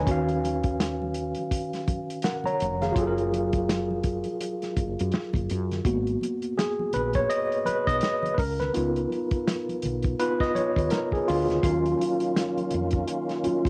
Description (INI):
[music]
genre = R&B, neo-soul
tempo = 83 BPM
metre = 4/4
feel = swing 59% on 16ths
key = unclear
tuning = A4 = 439 Hz
[part]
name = tine electric piano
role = accompaniment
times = 0.0-13.7 s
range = D#3 to A#5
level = -28 LUFS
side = equal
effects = overdrive, cassette tape
[part]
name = woody fretless electric bass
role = bass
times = 0.0-13.7 s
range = E#1 to F#2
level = -33 LUFS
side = equal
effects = tube saturation
[part]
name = warm soul drum kit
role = drums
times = 0.1-13.7 s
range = hi-hat, kick drum, snare drum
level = -32 LUFS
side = equal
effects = cassette tape
[part]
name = congas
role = percussion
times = 0.1-13.6 s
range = none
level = -42 LUFS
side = equal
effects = none
[part]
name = percussive tonewheel organ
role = sustained chords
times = 11.6-13.7 s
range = D#3 to E#4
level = -33 LUFS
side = equal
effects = overdrive, chorus vibrato, stopped rotary speaker, cassette tape
[sound]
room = moderate booth ambience, RT60 0.2 s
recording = home recording on cassette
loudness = -27 LUFS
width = mono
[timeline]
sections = 0.0-5.8 A section; 5.8-13.7 B section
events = tine electric piano solo 5.8-13.7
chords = 0.1 D#m9; 3.0 F#maj9; 5.8 G#m9; 8.4 C#9; 11.6 D#m9